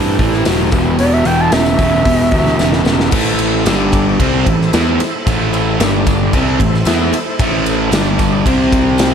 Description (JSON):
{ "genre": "classic rock", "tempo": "112 BPM", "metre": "4/4", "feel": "straight", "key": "A minor from 3.1 s", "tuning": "A4 = 439 Hz", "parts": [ { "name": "bright tonewheel organ", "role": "sustained chords", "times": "0.0-9.1 s", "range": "C4 to D5", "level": "-23 LUFS", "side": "equal", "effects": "slow rotary speaker, overdrive, chorus vibrato" }, { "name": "overdriven semi-hollow guitar", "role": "riff", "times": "0.0-9.1 s", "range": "E2 to E4", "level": "-15 LUFS", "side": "right 1 dB", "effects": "none" }, { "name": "fuzz picked electric bass", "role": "bass", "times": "0.0-9.1 s", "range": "E1 to G2", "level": "-18 LUFS", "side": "equal", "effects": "overdrive" }, { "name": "tambourine", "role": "percussion", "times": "0.1-9.1 s", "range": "none", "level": "-34 LUFS", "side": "left 8 dB", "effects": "none" }, { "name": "big rock drum kit", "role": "drums", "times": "0.2-9.1 s", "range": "crash cymbal, hi-hat, kick drum, ride cymbal, snare drum", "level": "-17 LUFS", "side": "equal", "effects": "none" }, { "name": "mellow clarinet", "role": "melody", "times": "1.0-3.1 s", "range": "D5 to A5", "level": "-16 LUFS", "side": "equal", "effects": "none" } ], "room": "light reverb, small room reverb", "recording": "none", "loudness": "-11 LUFS", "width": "side -7 dB against mid", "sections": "0.0-3.1 A section; 3.1-9.1 B section", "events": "clarinet solo 0.0-3.1; drum fill 2.6-3.1", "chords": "0.0 Am7; 0.7 Em; 3.1 Am; 3.7 G5; 4.2 Am; 5.8 G5; 6.3 Am; 7.9 G5; 8.5 C5", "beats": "0.45 | 0.99 1.52 2.06 2.59 | 3.12 3.66 4.19 4.72 | 5.26 5.79 6.32 6.86 | 7.39 7.92 8.45 8.98" }